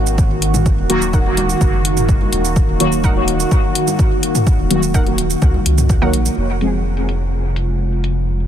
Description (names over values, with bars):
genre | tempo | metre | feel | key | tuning
dub techno | 126 BPM | 4/4 | straight | unclear | A4 = 439 Hz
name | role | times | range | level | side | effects
warbly tape-like pad | sustained chords | 0.0-8.5 s | C3 to Gb4 | -21 LUFS | right 1 dB | chorus, built-in reverb, sidechain pumping
soft dub sub bass | bass | 0.0-8.5 s | Eb1 to Db2 | -19 LUFS | equal | tube saturation, sidechain pumping
electronic shaker and hi-hat | drums | 0.1-8.1 s | none | -23 LUFS | right 2 dB | overdrive, low-pass filter on hats, low-pass filter on perc, low-pass filter on room
electronic kick drum | drums | 0.2-6.0 s | none | -16 LUFS | equal | none
electronic toms and congas | percussion | 0.5-5.9 s | none | -24 LUFS | equal | none
resonant sweep polysynth | stabs | 0.9-6.7 s | Eb3 to Ab4 | -21 LUFS | equal | chorus, phaser, sidechain pumping, dub echo
warbly dusty pluck | riff | 1.1-6.1 s | Eb4 to Gb5 | -29 LUFS | right 2 dB | chorus, sidechain pumping, dub echo
room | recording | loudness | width
light reverb | dense, heavily limited modern master | -13 LUFS | side -10 dB against mid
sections
0.0-6.4 A section; 6.4-8.5 B section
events
none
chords
0.0 Ebm; 6.4 Fm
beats
0.18 | 0.66 1.14 1.61 2.09 | 2.56 3.04 3.52 3.99 | 4.47 4.94 5.42 5.90 | 6.37 6.85 7.33 7.80 | 8.28